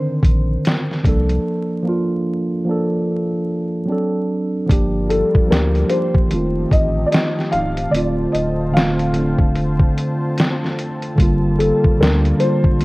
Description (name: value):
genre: lo-fi hip hop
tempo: 74 BPM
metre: 4/4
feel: swing 60% on 16ths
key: unclear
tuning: A4 = 440 Hz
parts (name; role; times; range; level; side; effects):
- felt-muted upright piano; melody; 0.0-12.8 s; A4 to F5; -22 LUFS; left 1 dB; low-pass filter
- mellow tine electric piano; accompaniment; 0.0-12.8 s; D3 to Bb4; -19 LUFS; right 1 dB; cassette tape, low-pass filter
- warm sub bass; bass; 0.2-12.8 s; Db1 to D2; -22 LUFS; equal; none
- lo-fi sampler-style drum kit; drums; 0.2-12.8 s; hi-hat, kick drum, snare drum; -17 LUFS; equal; none
- warm analog pad; sustained chords; 4.7-12.8 s; D3 to A5; -27 LUFS; left 1 dB; chorus, low-pass filter
room: moderate spring reverb, RT60 2.5 s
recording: worn, warbling old tape, cassette tape, vinyl crackle, warbly pitch drift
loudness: -15 LUFS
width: side -21 dB against mid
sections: 0.0-4.7 A section; 4.7-12.8 B section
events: break 1.4-4.7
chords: 0.0 Cm9; 1.0 Bbmaj7/C; 3.9 D7; 4.7 Gm7; 6.3 F7; 7.9 Dm7; 11.2 Gm7